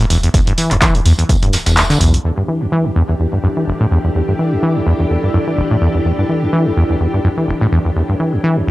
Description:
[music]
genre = acid house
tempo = 126 BPM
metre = 4/4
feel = swing 55% on 16ths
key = E dorian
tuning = A4 = 439 Hz
[part]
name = acid bass, saw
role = riff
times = 0.0-8.7 s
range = E1 to E3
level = -14 LUFS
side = equal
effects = tape echo
[part]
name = round analog bass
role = bass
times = 0.0-2.2 s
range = D1 to E2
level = -18 LUFS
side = equal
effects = sidechain pumping
[part]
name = punchy analog drum machine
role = drums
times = 0.0-2.2 s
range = handclaps, hi-hat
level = -18 LUFS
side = equal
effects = low-pass filter on hats, low-pass filter on snare
[part]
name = jazz brush drum kit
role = drums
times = 0.1-2.1 s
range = hi-hat, snare drum, tambourine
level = -25 LUFS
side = right 1 dB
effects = sidechain pumping on hats, high-pass filter on hats, high-pass filter on snare, sidechain pumping on perc, high-pass filter on perc, high-pass filter on room
[part]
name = electronic kick drum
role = drums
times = 0.3-1.4 s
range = none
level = -15 LUFS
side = equal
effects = none
[part]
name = string machine, full ensemble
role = sustained chords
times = 2.2-8.7 s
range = E3 to G4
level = -22 LUFS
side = left 1 dB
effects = ensemble chorus, sidechain pumping
[part]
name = granular cloud pad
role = texture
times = 3.3-8.7 s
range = E4 to G5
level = -23 LUFS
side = equal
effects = built-in reverb, sidechain pumping
[sound]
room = light reverb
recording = dry, gritty hardware recording, cassette tape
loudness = -12 LUFS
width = side -17 dB against mid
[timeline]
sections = 0.0-2.2 A section; 2.2-8.7 B section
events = kick drops out 1.8-2.2; band accent 1.8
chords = 0.0 E7(no3); 2.2 Em7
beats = | 0.34 0.82 1.29 1.77 | 2.25 2.72 3.20 3.67 | 4.15 4.63 5.10 5.58 | 6.05 6.53 7.01 7.48 | 7.96 8.44

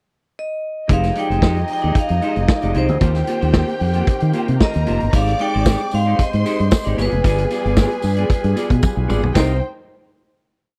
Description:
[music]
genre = disco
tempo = 114 BPM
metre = 4/4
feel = straight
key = C minor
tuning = A4 = 440 Hz
[part]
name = vibraphone with hard mallets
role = melody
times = 0.4-9.6 s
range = B4 to G5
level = -26 LUFS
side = equal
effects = none
[part]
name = warm studio string section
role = second line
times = 0.9-9.6 s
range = Eb4 to D6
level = -30 LUFS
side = equal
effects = none
[part]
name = semi-hollow electric guitar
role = accompaniment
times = 0.9-9.5 s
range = Ab3 to Eb5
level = -27 LUFS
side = equal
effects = none
[part]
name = overdriven tonewheel organ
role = sustained chords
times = 0.9-9.6 s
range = C3 to B4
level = -33 LUFS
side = equal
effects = slow rotary speaker
[part]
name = fingered electric bass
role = bass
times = 0.9-9.6 s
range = F1 to Eb3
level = -21 LUFS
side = equal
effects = none
[part]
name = vintage drum kit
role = drums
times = 0.9-9.5 s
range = hi-hat, kick drum, ride cymbal, snare drum, toms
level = -19 LUFS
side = equal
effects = none
[part]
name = tambourine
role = percussion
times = 5.1-9.6 s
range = none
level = -40 LUFS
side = equal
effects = none
[sound]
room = small room ambience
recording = dry, close 1970s-style studio recording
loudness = -18 LUFS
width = mono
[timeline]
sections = 0.0-0.9 pickup bar; 0.9-9.4 pre-chorus; 9.4-10.8 final chord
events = drum fill 8.8-9.4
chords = 0.0 N.C.; 0.9 Fm9; 3.0 Eb69; 5.1 Abmaj7; 7.0 G7b9; 9.4 Cm7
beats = 0.36 | 0.89 1.42 1.95 2.48 | 3.01 3.54 4.07 4.60 | 5.13 5.66 6.19 6.71 | 7.24 7.77 8.30 8.82 | 9.35

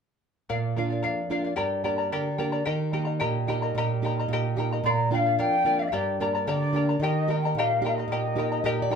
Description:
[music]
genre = andean folk, Andean ensemble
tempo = 110 BPM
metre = 2/4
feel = straight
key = unclear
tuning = A4 = 436 Hz
[part]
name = charango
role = accompaniment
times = 0.5-9.0 s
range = G4 to Bb5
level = -28 LUFS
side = left 3 dB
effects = none
[part]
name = nylon-string guitar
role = accompaniment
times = 0.5-9.0 s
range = F2 to Eb5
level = -27 LUFS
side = right 3 dB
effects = none
[part]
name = mellow quena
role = melody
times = 4.8-8.9 s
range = D5 to C6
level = -27 LUFS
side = left 2 dB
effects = plate reverb
[sound]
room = wet small room reverb, RT60 0.5 s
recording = heard from further back in the room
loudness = -24 LUFS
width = side -6 dB against mid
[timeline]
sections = 0.5-4.8 A section; 4.8-9.0 B section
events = nylon-string guitar fill 8.4-9.0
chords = 0.5 Bb; 1.6 Gm; 2.7 Eb; 4.8 Bb; 5.9 Gm; 7.0 Eb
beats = | 0.49 1.03 | 1.58 2.12 | 2.67 3.21 | 3.75 4.30 | 4.84 5.38 | 5.93 6.47 | 7.01 7.56 | 8.10 8.64

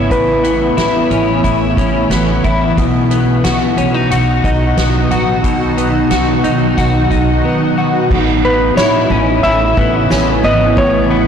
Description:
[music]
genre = dream pop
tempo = 90 BPM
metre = 4/4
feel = straight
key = A lydian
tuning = A4 = 440 Hz
[part]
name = clean lap steel guitar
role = melody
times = 0.0-1.4, 8.4-11.3 s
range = B4 to E5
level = -16 LUFS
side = equal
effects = ping-pong delay
[part]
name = granular cloud pad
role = sustained chords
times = 0.0-11.3 s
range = B2 to F#4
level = -17 LUFS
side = right 2 dB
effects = built-in reverb
[part]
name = clean electric guitar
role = arpeggios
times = 0.0-11.3 s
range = A2 to F#4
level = -15 LUFS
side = left 3 dB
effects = ensemble chorus, ping-pong delay
[part]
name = upright bass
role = bass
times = 0.0-11.3 s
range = G#1 to B1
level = -18 LUFS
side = equal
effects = tube saturation
[part]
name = soft-mallet drum kit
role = drums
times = 0.1-11.3 s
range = crash cymbal, hi-hat, kick drum, ride cymbal, snare drum, tambourine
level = -20 LUFS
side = right 1 dB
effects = none
[sound]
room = moderate shimmer reverb, RT60 3.9 s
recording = blown-out, overdriven recording, overdrive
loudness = -11 LUFS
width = side -7 dB against mid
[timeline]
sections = 0.0-8.1 A section; 8.1-11.3 B section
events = none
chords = 0.0 Aadd9; 2.8 B; 8.1 Aadd9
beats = | 0.11 0.78 1.44 2.11 | 2.78 3.44 4.11 4.78 | 5.44 6.11 6.78 7.44 | 8.11 8.78 9.44 10.11 | 10.78

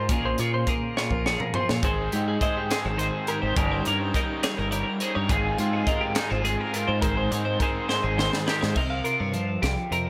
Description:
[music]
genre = math rock and midwest emo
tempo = 69 BPM (dotted quarters)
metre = 6/8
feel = straight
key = Ab major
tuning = A4 = 441 Hz
[part]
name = twelve-string electric guitar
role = accompaniment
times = 0.0-10.1 s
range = Ab2 to C5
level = -31 LUFS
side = equal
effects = harmonic tremolo
[part]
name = twelve-string electric guitar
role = arpeggios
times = 0.0-10.1 s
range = G4 to F5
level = -31 LUFS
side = equal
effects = spring reverb, tape echo
[part]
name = growling fingered electric bass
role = bass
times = 0.0-10.1 s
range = G1 to Bb2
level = -31 LUFS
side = equal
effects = overdrive
[part]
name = crisp fusion drum kit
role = drums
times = 0.1-10.1 s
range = crash cymbal, hi-hat, kick drum, snare drum, toms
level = -31 LUFS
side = equal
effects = none
[part]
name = raw garage guitar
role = riff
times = 1.8-8.8 s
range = G3 to Bb4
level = -34 LUFS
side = equal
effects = overdrive
[sound]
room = light reverb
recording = none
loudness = -25 LUFS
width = mono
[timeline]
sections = 0.0-8.8 A section; 8.8-10.1 B section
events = drum fill 1.0-1.8, 7.9-8.8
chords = 0.1 Bbm7; 1.8 Abmaj7; 3.6 Eb7/G; 5.3 Fm7/Ab; 7.0 Abmaj7; 8.8 C7sus4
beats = | 0.11 0.98 | 1.84 2.71 | 3.57 4.44 | 5.30 6.17 | 7.04 7.91 | 8.78 9.65

